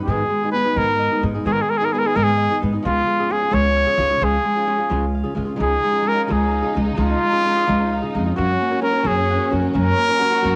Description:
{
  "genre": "mexican folk, mariachi",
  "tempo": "87 BPM (dotted quarters)",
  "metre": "6/8",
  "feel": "straight",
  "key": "unclear",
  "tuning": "A4 = 440 Hz",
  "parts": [
    { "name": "clear trumpet", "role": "melody", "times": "0.0-10.6 s", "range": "E#4 to C#5", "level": "-21 LUFS", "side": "equal", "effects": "cassette tape" },
    { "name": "flamenco guitar", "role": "accompaniment", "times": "0.0-10.6 s", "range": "G#2 to A#4", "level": "-28 LUFS", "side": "equal", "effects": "cassette tape" },
    { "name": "Celtic harp", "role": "arpeggios", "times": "0.0-10.6 s", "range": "D#3 to F#5", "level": "-31 LUFS", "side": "equal", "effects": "cassette tape" },
    { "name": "upright bass", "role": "bass", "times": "0.1-10.6 s", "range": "C#2 to G#2", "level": "-25 LUFS", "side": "equal", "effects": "transformer saturation" },
    { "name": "warm studio violin section", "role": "second line", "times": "5.6-10.6 s", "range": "C#4 to F#4", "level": "-29 LUFS", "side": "equal", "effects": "cassette tape" }
  ],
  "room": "light reverb, studio ambience",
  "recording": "home recording on cassette",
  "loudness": "-19 LUFS",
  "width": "mono",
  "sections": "0.0-10.6 A section",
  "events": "none",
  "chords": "0.1 G#m; 2.8 C#; 8.4 F#"
}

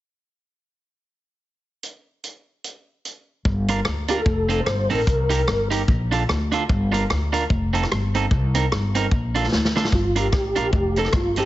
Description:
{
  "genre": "ska",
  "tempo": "148 BPM",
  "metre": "4/4",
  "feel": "swing 59% on 8ths",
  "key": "unclear",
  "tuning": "A4 = 440 Hz",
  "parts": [
    { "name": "vintage drum kit", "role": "drums", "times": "1.8-11.4 s", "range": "hi-hat, kick drum, rim click, snare drum", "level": "-23 LUFS", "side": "equal", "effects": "none" },
    { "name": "upright bass", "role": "bass", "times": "3.5-11.5 s", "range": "F1 to D2", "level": "-23 LUFS", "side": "left 1 dB", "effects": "none" },
    { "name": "electric guitar at the edge of break-up", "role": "accompaniment", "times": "3.7-11.5 s", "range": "C4 to Bb4", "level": "-25 LUFS", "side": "right 5 dB", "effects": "dub echo" },
    { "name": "mellow tonewheel organ", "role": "melody", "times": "4.1-5.7, 9.9-11.5 s", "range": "F4 to C5", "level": "-24 LUFS", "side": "equal", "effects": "chorus vibrato, stopped rotary speaker" }
  ],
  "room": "light reverb, small room ambience",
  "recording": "heavily compressed radio sound, multiband compression, nothing above 7.8 kHz",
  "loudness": "-19 LUFS",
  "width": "side -15 dB against mid",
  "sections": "1.8-3.5 A section; 3.5-9.9 B section; 9.9-11.5 C section",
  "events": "drum fill 9.5-9.9",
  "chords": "1.8 N.C.; 3.5 Gm7; 4.3 F7; 5.1 Cm7; 5.9 Bbmaj7; 6.7 Gm7; 7.5 F7; 8.3 Cm7; 9.1 Bbmaj7; 9.9 Gm7; 10.7 F7"
}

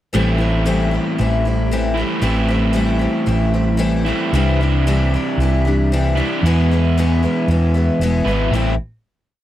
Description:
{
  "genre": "folk rock and heartland rock",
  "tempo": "115 BPM",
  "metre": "4/4",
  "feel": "straight",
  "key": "A minor",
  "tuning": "A4 = 442 Hz",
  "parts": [
    { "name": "picked twelve-string acoustic guitar", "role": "accompaniment", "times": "0.1-8.7 s", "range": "E2 to E4", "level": "-21 LUFS", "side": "left 4 dB", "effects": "none" },
    { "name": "crunchy overdriven guitar", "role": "riff", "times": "0.1-8.7 s", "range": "E2 to E4", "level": "-20 LUFS", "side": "right 2 dB", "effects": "none" },
    { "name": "hollow-body short-scale fingered electric bass", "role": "bass", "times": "0.1-8.8 s", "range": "E1 to E2", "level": "-18 LUFS", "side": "equal", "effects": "none" }
  ],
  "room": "little or no reverb",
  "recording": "dry, close 1970s-style studio recording",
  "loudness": "-15 LUFS",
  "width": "side -13 dB against mid",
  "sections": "0.1-8.5 verse; 8.5-9.4 final chord",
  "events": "none",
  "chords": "0.1 Am7; 4.3 Cadd9; 6.4 E; 8.5 Am7"
}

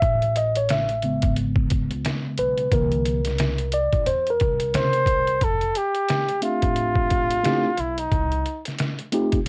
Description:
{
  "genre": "hip hop, jazz-hop",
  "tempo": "89 BPM",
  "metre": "4/4",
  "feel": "swing 59% on 16ths",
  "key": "unclear",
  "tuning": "A4 = 445 Hz",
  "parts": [
    { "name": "mellow tine electric piano", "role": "accompaniment", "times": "0.0-9.4 s", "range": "C#3 to E5", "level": "-26 LUFS", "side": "equal", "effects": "none" },
    { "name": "upright bass", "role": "bass", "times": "0.0-9.5 s", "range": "F1 to C3", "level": "-30 LUFS", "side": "equal", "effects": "none" },
    { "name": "trip hop sampler-style drum kit", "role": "drums", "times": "0.0-9.5 s", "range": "hi-hat, kick drum, snare drum", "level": "-27 LUFS", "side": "equal", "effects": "cassette tape" },
    { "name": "breathy flugelhorn", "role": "melody", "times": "4.8-8.7 s", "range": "Eb4 to C5", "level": "-25 LUFS", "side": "equal", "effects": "cassette tape" }
  ],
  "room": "little or no reverb",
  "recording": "home recording on cassette",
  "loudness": "-23 LUFS",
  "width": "mono",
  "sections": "0.0-5.4 A section; 5.4-9.5 B section",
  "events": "tine electric piano solo 0.0-5.4",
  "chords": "0.0 Amaj9; 2.7 C7; 5.4 Fmaj13; 8.1 Cm"
}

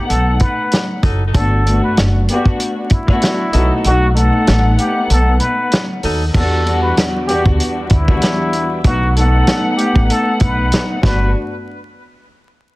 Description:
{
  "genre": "hip hop, boom-bap hip-hop",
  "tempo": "96 BPM",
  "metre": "4/4",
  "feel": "swing 55% on 16ths",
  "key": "unclear",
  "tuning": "A4 = 440 Hz",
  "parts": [
    { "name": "trumpet with plunger mute", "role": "melody", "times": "0.0-11.3 s", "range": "E4 to B4", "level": "-21 LUFS", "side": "equal", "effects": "high-pass filter, low-pass filter, tape echo" },
    { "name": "dark chamber string section", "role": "accompaniment", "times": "0.0-11.3 s", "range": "E2 to F#5", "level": "-18 LUFS", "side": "left 1 dB", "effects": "high-pass filter, low-pass filter" },
    { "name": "upright bass", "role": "bass", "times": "0.1-11.3 s", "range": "F#1 to E2", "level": "-15 LUFS", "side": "equal", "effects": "none" },
    { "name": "warm soul drum kit", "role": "drums", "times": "0.1-11.2 s", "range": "crash cymbal, hi-hat, kick drum, snare drum", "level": "-16 LUFS", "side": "equal", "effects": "none" },
    { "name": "mellow horn section", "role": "stabs", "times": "1.0-6.2 s", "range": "F#3 to D#5", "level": "-24 LUFS", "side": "equal", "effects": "high-pass filter, low-pass filter, tape echo" },
    { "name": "bright tonewheel organ", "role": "sustained chords", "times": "6.3-11.3 s", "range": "E3 to B4", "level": "-30 LUFS", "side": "equal", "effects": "none" }
  ],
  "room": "studio ambience",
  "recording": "dense, heavily limited modern master, vinyl crackle",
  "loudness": "-12 LUFS",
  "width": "side -20 dB against mid",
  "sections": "0.0-6.3 A section; 6.3-11.3 B section; 11.3-12.8 C section",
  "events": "kick muted 3.8-6.3",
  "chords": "0.0 B7; 1.3 Gmaj7; 3.5 B7; 6.3 Em7; 8.8 B7; 11.0 Gmaj7; 11.3 N.C."
}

